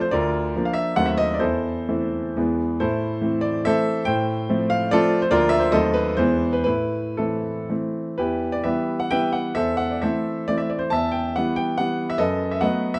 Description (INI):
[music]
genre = classical, romantic triple-time dance for piano with dotted rhythms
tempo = 110-152 BPM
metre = 3/4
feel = rubato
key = A minor, E minor from 8.2 s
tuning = A4 = 440 Hz
[part]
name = warm grand piano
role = solo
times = 0.0-13.0 s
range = D2 to A5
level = -22 LUFS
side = equal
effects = none
[sound]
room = moderate recital hall reverb, RT60 1.4 s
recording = close, detailed microphones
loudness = -23 LUFS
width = mono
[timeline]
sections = 0.0-8.2 A section; 8.2-13.0 B section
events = none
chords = 0.1 Bb/D; 1.0 D#dim7; 1.4 Am/E; 2.4 E; 2.8 Am; 4.1 F/A; 5.3 Bb/D; 5.7 D#dim7; 6.2 E; 6.7 Am; 8.2 Em; 9.6 Am/E; 10.9 Em; 12.2 B7/F#